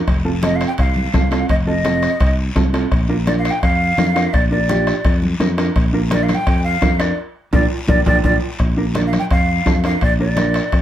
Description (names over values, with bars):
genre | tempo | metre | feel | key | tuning
latin, cumbia | 169 BPM | 4/4 | straight | Bb major | A4 = 441 Hz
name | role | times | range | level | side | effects
mellow electric guitar | accompaniment | 0.0-10.6 s | C4 to Bb4 | -22 LUFS | right 3 dB | none
fingered electric bass | bass | 0.1-10.8 s | F1 to F2 | -20 LUFS | equal | none
bombo | percussion | 0.1-10.8 s | none | -20 LUFS | equal | none
congas | percussion | 0.1-10.8 s | none | -24 LUFS | left 1 dB | none
guiro | percussion | 0.1-10.8 s | none | -34 LUFS | left 4 dB | none
timbales | percussion | 0.1-10.8 s | none | -30 LUFS | right 4 dB | none
breathy mellow jazz flute | melody | 0.4-10.8 s | D5 to G5 | -20 LUFS | equal | none
room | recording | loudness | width
moderate studio ambience, RT60 0.5 s | heard from further back in the room | -14 LUFS | side -11 dB against mid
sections
0.0-8.6 A section; 8.6-10.8 A section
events
band accent 7.2-8.6; drum fill 7.5-8.6; clean electric guitar fill 7.9-8.6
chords
0.1 F7; 2.9 Bb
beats
| 0.08 0.43 0.79 1.14 | 1.50 1.85 2.21 2.56 | 2.92 3.27 3.63 3.98 | 4.34 4.69 5.05 5.40 | 5.76 6.11 6.47 6.82 | 7.18 7.53 7.89 8.24 | 8.60 8.95 9.31 9.66 | 10.02 10.37 10.73